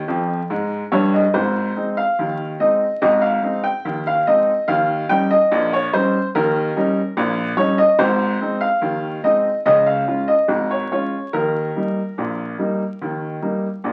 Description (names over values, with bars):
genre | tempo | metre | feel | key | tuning
ragtime piano | 72 BPM | 2/4 | straight | Ab major | A4 = 437 Hz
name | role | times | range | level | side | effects
clear upright piano | solo | 0.0-13.9 s | Ab1 to G5 | -19 LUFS | equal | none
room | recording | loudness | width
wet club reverb, RT60 0.7 s | very old 78 rpm record, vinyl crackle | -19 LUFS | mono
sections
0.0-1.3 A section; 1.3-13.9 B section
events
upright piano fill 0.1-1.3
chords
0.0 Eb; 1.3 Ab; 4.7 Eb7; 8.0 Ab; 9.7 Db; 11.3 Eb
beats
0.50 | 1.34 2.18 | 3.01 3.84 | 4.67 5.50 | 6.33 7.16 | 7.99 8.82 | 9.66 10.49 | 11.33 12.17 | 13.01 13.84